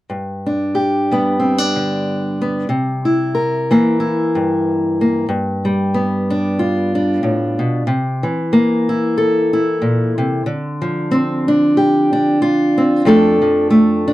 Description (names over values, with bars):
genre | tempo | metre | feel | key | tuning
folk | 93 BPM | 4/4 | swing 56% on 8ths | unclear | A4 = 441 Hz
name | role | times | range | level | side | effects
fingerpicked steel-string acoustic guitar | accompaniment | 0.1-14.1 s | F2 to Bb4 | -14 LUFS | equal | none
room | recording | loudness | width
moderate booth ambience, RT60 0.2 s | dry, close 1970s-style studio recording | -14 LUFS | side -16 dB against mid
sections
0.1-5.3 A section; 5.3-14.1 B section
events
none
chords
0.1 G; 2.7 C7; 5.3 G7; 7.9 C7; 10.5 Dm7; 13.1 F6